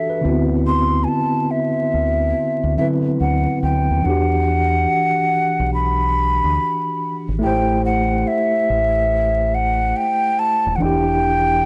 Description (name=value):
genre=lo-fi hip hop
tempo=71 BPM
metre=4/4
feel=swing 65% on 16ths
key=E minor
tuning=A4 = 441 Hz
part: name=mellow hollow jazz flute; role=melody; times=0.0-11.7 s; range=E5 to C6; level=-21 LUFS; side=equal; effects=none
part: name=mellow tine electric piano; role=accompaniment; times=0.0-11.7 s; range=D3 to C5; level=-24 LUFS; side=equal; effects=none
part: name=deep dub fingered electric bass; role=bass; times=0.2-11.6 s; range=D#1 to D3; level=-23 LUFS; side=equal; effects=tube saturation
room=light reverb, small room ambience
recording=dry, gritty hardware recording, vinyl crackle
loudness=-18 LUFS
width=mono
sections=0.0-4.0 A section; 4.0-11.7 A section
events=none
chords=0.2 D13; 4.0 Em9; 7.4 Am7; 10.8 Em7